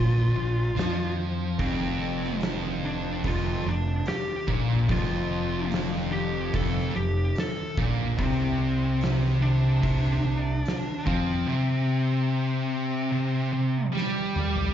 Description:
stoner and doom metal; 73 BPM; 4/4; straight; A4 = 440 Hz
fuzz lead guitar; melody; 0.0-13.9 s; C4 to A4; -31 LUFS; left 2 dB; distortion, slapback echo
fuzz guitar; riff; 0.0-14.7 s; F2 to G3; -32 LUFS; left 7 dB; distortion
thick fuzz guitar; riff; 0.0-14.7 s; F2 to G3; -28 LUFS; right 4 dB; distortion
fuzz fingered electric bass; bass; 0.0-11.4 s; F1 to F2; -30 LUFS; equal; overdrive
oversized low-tuned drum kit; drums; 0.8-14.7 s; hi-hat, kick drum, snare drum, toms; -32 LUFS; equal
heavy high-gain guitar; riff; 1.6-14.7 s; F2 to G3; -33 LUFS; left 1 dB; distortion, slapback echo
light reverb; live gig heard through the venue's PA, club reverb, nothing above 7.5 kHz; -24 LUFS; side -10 dB against mid
0.0-14.7 A section
drum fill 13.9-14.7
0.0 Bb5; 1.6 F5; 8.2 C5
0.77 | 1.60 2.42 3.25 4.07 | 4.89 5.71 6.54 7.36 | 8.18 9.01 9.83 10.65 | 11.47 12.29 13.12 13.94

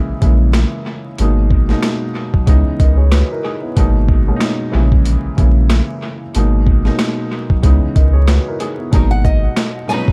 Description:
hip hop, boom-bap hip-hop; 93 BPM; 4/4; swing 57% on 16ths; G# minor; A4 = 440 Hz
dark upright piano; accompaniment; 0.0-10.1 s; A#2 to D#5; -22 LUFS; equal
warm sub bass; bass; 0.1-10.1 s; G#1 to C#2; -15 LUFS; equal
boom bap sampler-style drum kit; drums; 0.2-10.1 s; hi-hat, kick drum, rim click, shaker, snare drum; -18 LUFS; equal; dub echo
finger snap; percussion; 0.5-9.7 s; barely audible
clear studio string section; stabs; 8.9-10.1 s; F#3 to B4; -28 LUFS; equal; dub echo
nylon-string guitar; melody; 9.1-10.1 s; D#5 to G#5; -25 LUFS; equal; dub echo
little or no reverb; echo-heavy mix, vinyl crackle; -14 LUFS; mono
0.0-8.9 A section; 8.9-10.1 B section
0.0 A#m7b5; 1.2 G#m7; 2.5 C#m7; 3.8 G#m7; 4.7 A#m7b5; 6.3 G#m7; 7.6 C#m7; 8.9 G#m9
0.54 | 1.19 1.83 2.48 3.12 | 3.77 4.41 5.06 5.70 | 6.35 6.99 7.64 8.28 | 8.93 9.57

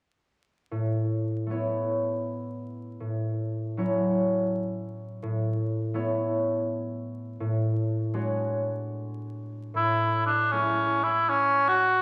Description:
classical, impressionist duo for cor anglais and harp; 71-84 BPM; 3/4; rubato; A major; A4 = 444 Hz
concert harp; accompaniment; 0.7-12.0 s; A2 to C#5; -30 LUFS; equal
warm cor anglais; melody; 9.8-12.0 s; C#4 to F#4; -24 LUFS; equal
wet recital hall reverb, RT60 1.4 s; vinyl crackle; -27 LUFS; mono
0.7-9.7 A section; 9.7-12.0 B section
0.7 Aadd9; 3.0 F#m7/A; 5.2 Aadd9; 7.4 Dmaj7#11/A; 9.7 Amaj7
| 0.71 1.49 2.25 | 3.01 3.77 4.51 | 5.22 5.94 6.67 | 7.40 8.14 8.92 | 9.74 10.51 11.29

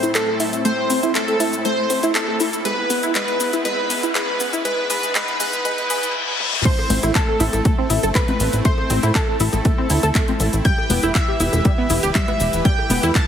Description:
progressive house; 120 BPM; 4/4; straight; A minor; A4 = 440 Hz
plucky unison lead; melody; 0.0-13.3 s; A4 to A5; -23 LUFS; equal; sidechain pumping, digital delay
supersaw pad; sustained chords; 0.0-13.3 s; G#2 to B4; -28 LUFS; equal; sidechain pumping, low-pass filter
tight sequenced synth; arpeggios; 0.0-13.1 s; G3 to A4; -23 LUFS; equal; chorus, sidechain pumping, digital delay
big-room dance drum kit; drums; 0.0-13.3 s; cabasa, crash cymbal, handclaps, hi-hat, toms; -24 LUFS; left 1 dB; studio reverb
riser and reverse cymbal; sound effects; 0.0-6.7 s; -28 LUFS; left 2 dB
soft round pluck; second line; 6.7-13.3 s; A5 to A6; -30 LUFS; left 1 dB; analog chorus, sidechain pumping, digital delay
electronic kick drum; drums; 6.7-13.3 s; -18 LUFS; equal; studio reverb
cowbell, congas and woodblock; percussion; 6.8-13.1 s; -28 LUFS; left 5 dB; sidechain pumping on perc
plucky analog bass; bass; 6.9-13.1 s; D1 to A2; -20 LUFS; equal; sidechain pumping
moderate digital room reverb, RT60 1.3 s, digital ambience; heavily compressed radio sound, multiband compression, high-pass filter; -16 LUFS; side -9 dB against mid
0.0-6.7 A section; 6.7-13.3 B section
build-up 0.0-6.7; riser 0.0-6.2; filter sweep on synth arpeggio sound 0.0-6.7; filter sweep on supersaw synth 0.0-6.7; filter sweep 0.0-6.7; reverse cymbal 5.7-6.7; drum fill 6.4; drop 6.7-13.3
0.0 Am; 2.7 E/G#; 6.7 Am; 10.7 Em
0.15 | 0.65 1.15 1.65 2.15 | 2.65 3.15 3.65 4.15 | 4.65 5.15 5.65 6.15 | 6.65 7.15 7.65 8.15 | 8.65 9.15 9.65 10.15 | 10.65 11.15 11.65 12.15 | 12.65 13.15

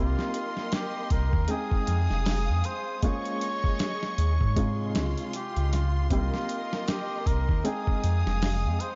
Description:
trip hop; 78 BPM; 4/4; swing 59% on 16ths; A4 = 440 Hz
trumpet with cup mute; melody; 0.0-9.0 s; F4 to Db5; -36 LUFS; equal; tape echo
felt-muted upright piano; accompaniment; 0.0-9.0 s; C3 to G5; -37 LUFS; equal; tremolo, tape echo
warm studio string section; sustained chords; 0.0-9.0 s; Ab3 to Eb6; -40 LUFS; equal
dark detuned saw bass; bass; 0.0-8.8 s; F1 to Ab2; -28 LUFS; equal
dusty soul sampler-style drum kit; drums; 0.2-9.0 s; hi-hat, kick drum, snare drum; -31 LUFS; equal
light reverb; nothing above 7.5 kHz; -27 LUFS; mono
0.0-9.0 A section
0.0 Cm7; 1.5 Fm7; 3.0 Eb7sus4; 4.6 Dbmaj7; 6.1 Cm7; 7.6 Fm7
0.72 1.49 2.26 | 3.03 3.80 4.57 5.34 | 6.11 6.88 7.64 8.41

